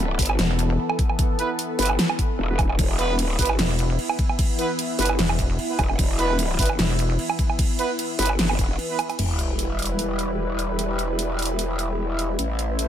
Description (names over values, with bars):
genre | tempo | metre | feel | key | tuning
heavy wobble dubstep | 150 BPM | 4/4 | swing 53% on 16ths, half-time | E minor | A4 = 440 Hz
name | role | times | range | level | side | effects
supersaw pad | sustained chords | 0.0-12.9 s | E3 to C5 | -28 LUFS | equal | phaser, sidechain pumping, low-pass filter
growl bass | bass | 0.0-12.9 s | E1 to A1 | -25 LUFS | equal | chorus, overdrive
dubstep drum kit | drums | 0.2-12.9 s | crash cymbal, hi-hat, snare drum, woodblock | -26 LUFS | right 2 dB | overdrive
electronic kick drum | drums | 0.2-8.7 s | none | -22 LUFS | equal | overdrive
pulsing pluck wobble bass | bass | 0.4-0.8, 3.6-7.2 s | E1 | -22 LUFS | equal | chorus, overdrive
warm brass ensemble | stabs | 1.4-9.0 s | B3 to B4 | -29 LUFS | right 4 dB | ping-pong delay
sub drop | sound effects | 9.2-10.8 s | none | -29 LUFS | equal | none
room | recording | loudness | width
little or no reverb | none | -20 LUFS | side -10 dB against mid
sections
0.0-9.2 A section; 9.2-12.9 B section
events
drop 0.0-9.2; break 8.8-9.2; impact 9.2-10.8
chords
0.0 E5; 9.2 Em